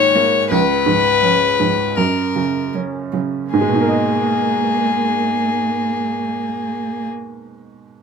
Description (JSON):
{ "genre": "neoclassical piano and strings", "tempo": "76-88 BPM", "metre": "4/4", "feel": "rubato", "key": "G# minor", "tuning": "A4 = 438 Hz", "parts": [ { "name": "warm violin", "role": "melody", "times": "0.0-7.1 s", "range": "G#4 to C#5", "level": "-17 LUFS", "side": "left 7 dB", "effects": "none" }, { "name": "warm upright piano", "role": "accompaniment", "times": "0.0-8.0 s", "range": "C#2 to D#5", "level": "-20 LUFS", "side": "right 5 dB", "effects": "none" }, { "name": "dark cello", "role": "second line", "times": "0.1-7.1 s", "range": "E#3 to A#3", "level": "-22 LUFS", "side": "right 6 dB", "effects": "none" } ], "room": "moderate studio ambience, RT60 0.5 s", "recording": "minimal, uncompressed stereo recording", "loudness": "-15 LUFS", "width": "side -6 dB against mid", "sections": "0.0-3.5 A section; 3.5-6.6 B section", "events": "slowing down 0.0-3.5", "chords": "0.5 C#7(no3); 2.0 F#; 3.5 G#madd9" }